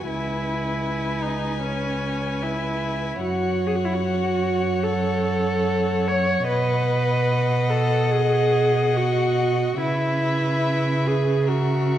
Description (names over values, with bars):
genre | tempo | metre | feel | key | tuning
classical, slow romantic movement for string quartet | 74 BPM | 4/4 | uneven beats, rubato | unclear | A4 = 439 Hz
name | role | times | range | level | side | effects
dark violin | melody | 0.0-12.0 s | E5 to G#5 | -30 LUFS | left 10 dB | none
rich violin | second line | 0.0-12.0 s | A#4 to D#5 | -31 LUFS | left 4 dB | none
rich viola | accompaniment | 0.0-12.0 s | C#4 to C#5 | -23 LUFS | right 1 dB | none
clear cello | bass | 0.0-12.0 s | C#2 to C#3 | -24 LUFS | right 2 dB | none
room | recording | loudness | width
wet scoring stage reverb, RT60 1.6 s | dark, warm production | -20 LUFS | side -11 dB against mid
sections
0.0-12.0 A section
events
none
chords
0.1 C#m7; 3.2 F#m; 6.5 B; 9.8 C#m7; 11.5 F#7/C#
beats
| 0.09 0.85 1.62 2.42 | 3.22 4.02 4.84 5.67 | 6.49 7.29 8.11 8.97 | 9.81 10.64 11.48